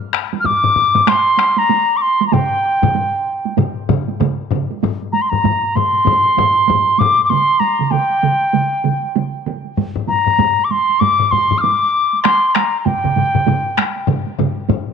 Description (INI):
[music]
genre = japanese traditional, taiko drum ensemble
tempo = 97 BPM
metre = 4/4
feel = swing 60% on 16ths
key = C suspended pentatonic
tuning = A4 = 440 Hz
[part]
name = taiko ensemble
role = percussion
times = 0.1-14.9 s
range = none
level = -20 LUFS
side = left 8 dB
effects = none
[part]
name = taiko ensemble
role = percussion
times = 0.3-14.9 s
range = none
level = -22 LUFS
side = right 15 dB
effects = none
[part]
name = mellow hollow piccolo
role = melody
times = 0.4-14.1 s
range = G5 to F6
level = -14 LUFS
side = left 1 dB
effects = none
[part]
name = taiko ensemble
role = percussion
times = 2.3-14.6 s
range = none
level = -20 LUFS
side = right 8 dB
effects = none
[sound]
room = moderate plate reverb, RT60 3.1 s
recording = 1960s-style stereo with parts hard left and right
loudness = -13 LUFS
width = side -6 dB against mid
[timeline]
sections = 0.0-4.8 A section; 4.8-14.9 B section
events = none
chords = none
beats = 0.46 1.08 1.71 | 2.33 2.95 3.58 4.20 | 4.82 5.44 6.06 6.68 | 7.30 7.92 8.54 9.16 | 9.78 10.39 11.01 11.62 | 12.24 12.85 13.47 14.08 | 14.69